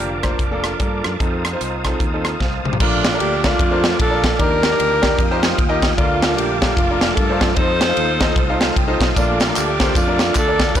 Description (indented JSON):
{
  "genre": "uptempo gospel",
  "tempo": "151 BPM",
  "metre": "4/4",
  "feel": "swing 61% on 8ths",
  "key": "Bb major",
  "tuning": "A4 = 440 Hz",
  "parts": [
    { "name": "clear grand piano", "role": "accompaniment", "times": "0.0-10.8 s", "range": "G2 to A5", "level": "-23 LUFS", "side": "left 1 dB", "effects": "none" },
    { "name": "muted French horn section", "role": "sustained chords", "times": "0.0-2.8 s", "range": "F3 to Eb4", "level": "-33 LUFS", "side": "equal", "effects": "none" },
    { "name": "tonewheel organ", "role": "sustained chords", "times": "0.0-10.8 s", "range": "F4 to Eb6", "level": "-26 LUFS", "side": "right 3 dB", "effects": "chorus vibrato, fast rotary speaker" },
    { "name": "fingered electric bass", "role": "bass", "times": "0.0-10.8 s", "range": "F1 to G2", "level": "-26 LUFS", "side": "equal", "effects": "transformer saturation" },
    { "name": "crisp fusion drum kit", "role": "drums", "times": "0.0-10.8 s", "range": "crash cymbal, hi-hat, kick drum, ride cymbal, rim click, snare drum, toms", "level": "-18 LUFS", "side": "equal", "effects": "none" },
    { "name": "warm saxophone section", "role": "melody", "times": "2.8-10.8 s", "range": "A3 to C5", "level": "-20 LUFS", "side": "equal", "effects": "none" },
    { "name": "tambourine and handclaps", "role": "percussion", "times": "9.2-10.8 s", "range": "none", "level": "-28 LUFS", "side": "equal", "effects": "none" }
  ],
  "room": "light reverb, small room ambience",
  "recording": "blown-out, overdriven recording, overdrive, faint mains hum",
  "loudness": "-15 LUFS",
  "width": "side -10 dB against mid",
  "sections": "0.0-2.8 A section; 2.8-10.8 B section",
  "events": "drum fill 2.4-2.8; grand piano fill 8.4-9.2",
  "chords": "0.0 Bbmaj7; 1.2 F7; 2.8 Bbmaj7; 4.4 Ebmaj7; 5.2 F9sus4; 6.0 Bbmaj7; 7.6 F7; 9.2 Bbmaj7",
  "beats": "0.40 0.80 | 1.20 1.60 2.00 2.40 | 2.80 3.19 3.59 3.99 | 4.39 4.79 5.19 5.58 | 5.98 6.38 6.78 7.18 | 7.57 7.97 8.37 8.77 | 9.17 9.56 9.96 10.36 | 10.76"
}